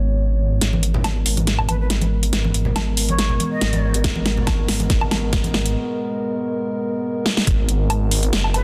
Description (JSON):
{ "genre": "deep dubstep", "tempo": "140 BPM", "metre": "4/4", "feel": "swing 53% on 16ths, half-time", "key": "G# minor", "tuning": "A4 = 440 Hz", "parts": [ { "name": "dark analog pad", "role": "sustained chords", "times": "0.0-8.6 s", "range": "G#3 to C#5", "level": "-28 LUFS", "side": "equal", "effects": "chorus" }, { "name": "dark detuned saw bass", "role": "bass", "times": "0.0-8.6 s", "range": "F#1 to G#1", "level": "-23 LUFS", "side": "equal", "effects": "none" }, { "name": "dubstep drum kit", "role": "drums", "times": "0.6-8.6 s", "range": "hi-hat, snare drum, woodblock", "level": "-25 LUFS", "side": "equal", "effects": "soft clipping on snare" }, { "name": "congas and bongos", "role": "percussion", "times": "0.7-5.5 s", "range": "none", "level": "-29 LUFS", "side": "equal", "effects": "none" }, { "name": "shakuhachi", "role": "melody", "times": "1.7-3.9, 8.5-8.6 s", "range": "B4 to D#5", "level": "-33 LUFS", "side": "equal", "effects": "dub echo" }, { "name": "electronic kick drum", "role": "drums", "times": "4.0-7.6 s", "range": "none", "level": "-24 LUFS", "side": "equal", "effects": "none" } ], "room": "light reverb", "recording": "dense, heavily limited modern master", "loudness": "-20 LUFS", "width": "mono", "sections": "0.6-7.5 A section; 7.5-8.6 B section", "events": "build-up 0.6-7.5; drum fill 0.6-5.8, 7.3; break 5.8-7.5; drop 7.5-8.6", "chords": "0.0 G#m; 0.6 G#madd9", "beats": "0.19 | 0.61 1.04 1.47 1.90 | 2.33 2.76 3.19 3.62 | 4.04 4.47 4.90 5.33 | 5.76 6.19 6.62 7.04 | 7.47 7.90 8.33" }